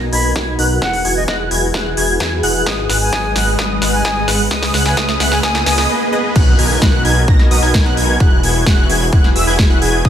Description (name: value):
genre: EDM, festival progressive house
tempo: 130 BPM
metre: 4/4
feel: straight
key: unclear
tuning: A4 = 439 Hz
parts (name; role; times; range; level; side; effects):
- lush unison pad; sustained chords; 0.0-10.1 s; G#3 to E5; -24 LUFS; left 1 dB; chorus, phaser, sidechain pumping
- wide unison lead; arpeggios; 0.0-10.1 s; D#6 to A#6; -21 LUFS; left 1 dB; wide subtle chorus, sidechain pumping, ping-pong delay
- supersaw stab; riff; 0.0-10.1 s; D#4 to A#5; -21 LUFS; right 1 dB; sidechain pumping, low-pass filter, ping-pong delay
- wide detuned saw bass; bass; 0.0-10.1 s; E1 to E2; -19 LUFS; equal; chorus, sidechain pumping
- riser and impact; sound effects; 1.8-8.2 s; none; -24 LUFS; right 2 dB; none
- concert flute; melody; 0.1-5.9 s; D#5 to B5; -23 LUFS; left 1 dB; ping-pong delay
- big-room dance drum kit; drums; 0.1-9.9 s; crash cymbal, hi-hat, snare drum; -20 LUFS; equal; high-pass filter on snare, high-pass filter on hats, high-pass filter on cymbals, high-pass filter on room
- electronic kick drum; drums; 0.4-10.1 s; none; -15 LUFS; equal; high-pass filter on kick, high-pass filter on room
room: light reverb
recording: none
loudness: -12 LUFS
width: side -10 dB against mid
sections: 0.0-6.4 A section; 6.4-10.1 B section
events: build-up 0.0-6.4; drum fill 0.0-5.9; filter sweep on supersaw synth 0.0-6.4; filter sweep on analog synth lead 0.0-6.4; filter sweep on analog synth pad 0.0-6.4; riser 1.8-6.4; break 5.9-6.4; drop 6.4-10.1; impact 6.4-8.2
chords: 0.0 Bmaj7; 0.8 Eadd9; 2.7 G#m; 4.5 C#m7; 6.4 Bmaj7; 8.2 Eadd9